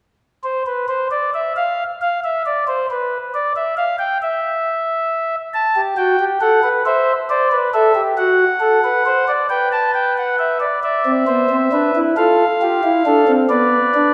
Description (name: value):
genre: classical, baroque-style 4-part fugue for pipe organ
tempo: 45 BPM (dotted quarters)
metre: 6/8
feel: straight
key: C major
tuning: A4 = 439 Hz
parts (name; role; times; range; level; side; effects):
- chamber organ, principal; solo; 0.4-14.1 s; B3 to A5; -17 LUFS; equal; none
room: wet scoring stage reverb, RT60 1.9 s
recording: none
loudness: -17 LUFS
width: mono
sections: 0.2-10.8 A section; 10.8-14.1 B section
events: none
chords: 0.2 N.C.; 5.5 G; 6.9 C; 8.2 D7/F#; 9.5 G/B; 10.8 C; 12.2 F; 13.5 G/B (rootless)